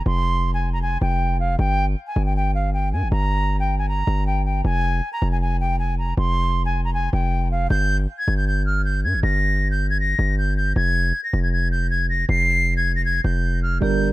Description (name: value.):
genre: hip hop, trap.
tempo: 157 BPM.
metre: 4/4.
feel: half-time.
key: G phrygian.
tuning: A4 = 440 Hz.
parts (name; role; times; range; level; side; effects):
reedy silver concert flute; melody; 0.0-14.1 s; F5 to C7; -24 LUFS; equal; none.
hard-hitting 808-style bass; bass; 0.0-14.1 s; F1 to G2; -21 LUFS; equal; none.
soft electric-piano-like synth keys; accompaniment; 13.8-14.1 s; G3 to Bb4; -19 LUFS; right 6 dB; chorus, tremolo.
room: small room ambience.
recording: none.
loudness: -19 LUFS.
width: side -17 dB against mid.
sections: 0.0-7.7 A section; 7.7-14.1 B section.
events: none.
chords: 0.0 F5; 1.6 Gm; 4.6 Fm; 7.7 Gm; 10.8 Fm.